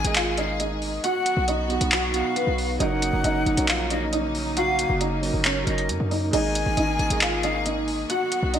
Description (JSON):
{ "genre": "hip hop, trap", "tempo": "136 BPM", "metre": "4/4", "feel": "half-time", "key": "unclear", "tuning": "A4 = 440 Hz", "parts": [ { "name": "felt-muted upright piano", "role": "melody", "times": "0.0-8.6 s", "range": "B3 to F#5", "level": "-26 LUFS", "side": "right 1 dB", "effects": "analog chorus, low-pass filter, digital delay" }, { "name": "breathy bright silver concert flute", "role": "second line", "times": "0.0-8.5 s", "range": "D#5 to G#5", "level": "-29 LUFS", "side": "left 3 dB", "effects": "digital delay" }, { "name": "dark grand piano", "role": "accompaniment", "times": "0.0-8.1 s", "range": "B2 to D#5", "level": "-31 LUFS", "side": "right 4 dB", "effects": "low-pass filter" }, { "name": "bright studio string section", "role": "sustained chords", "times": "0.0-8.6 s", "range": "C#3 to G#4", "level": "-32 LUFS", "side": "left 1 dB", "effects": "none" }, { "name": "hard-hitting 808-style bass", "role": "bass", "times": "0.0-8.6 s", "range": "F#1 to F#2", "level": "-27 LUFS", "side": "equal", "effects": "none" }, { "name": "booming analog drum machine", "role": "drums", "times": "0.0-8.6 s", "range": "crash cymbal, handclaps, hi-hat", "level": "-26 LUFS", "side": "equal", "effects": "gated reverb" } ], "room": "moderate plate reverb, RT60 1.0 s, studio ambience", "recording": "bright 1980s-style digital production", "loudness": "-21 LUFS", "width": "side -9 dB against mid", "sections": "0.0-6.3 A section; 6.3-8.6 A section", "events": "none", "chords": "0.0 G#sus2; 1.0 B; 2.8 F#6; 6.3 G#sus2" }